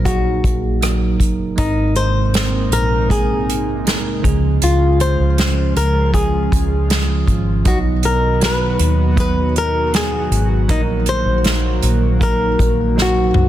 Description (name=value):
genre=pop ballad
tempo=79 BPM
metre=4/4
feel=straight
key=Db major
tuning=A4 = 440 Hz
part: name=bell-like tine electric piano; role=accompaniment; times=0.0-13.5 s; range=Ab2 to Eb5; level=-21 LUFS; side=right 5 dB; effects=phaser
part: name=vintage muted fingered electric bass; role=bass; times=0.0-13.5 s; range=Gb1 to Eb2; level=-18 LUFS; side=equal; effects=none
part: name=flamenco guitar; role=melody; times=0.1-13.5 s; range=Eb4 to C5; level=-20 LUFS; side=left 2 dB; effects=ping-pong delay
part: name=unplugged drum kit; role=drums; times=0.1-13.5 s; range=hi-hat, kick drum, rim click, snare drum, toms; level=-19 LUFS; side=equal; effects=none
part: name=airy breathy pad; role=sustained chords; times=1.6-13.5 s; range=C3 to Gb4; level=-26 LUFS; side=left 2 dB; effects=chorus
room=light reverb, studio ambience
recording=dense, heavily limited modern master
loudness=-14 LUFS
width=side -12 dB against mid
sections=0.0-13.5 A section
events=drum fill 13.0-13.5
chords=0.0 Ebm/Bb; 1.6 Abadd9; 4.2 Db; 7.7 Cb; 10.7 Ebm/Bb